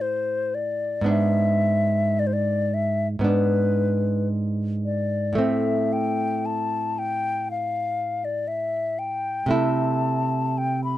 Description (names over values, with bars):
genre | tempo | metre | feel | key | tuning
romantic duo for flute and classical guitar | 54-60 BPM | 4/4 | rubato | A minor | A4 = 440 Hz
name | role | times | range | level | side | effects
mellow hollow silver concert flute | melody | 0.0-11.0 s | B4 to B5 | -25 LUFS | left 3 dB | none
nylon-string guitar | accompaniment | 0.0-11.0 s | G#2 to E4 | -24 LUFS | right 2 dB | none
room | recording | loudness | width
light reverb | dry, close 1970s-style studio recording | -21 LUFS | side -13 dB against mid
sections
0.0-11.0 A section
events
none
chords
0.0 Am; 1.1 E7/G#; 5.4 Am; 9.5 Am/C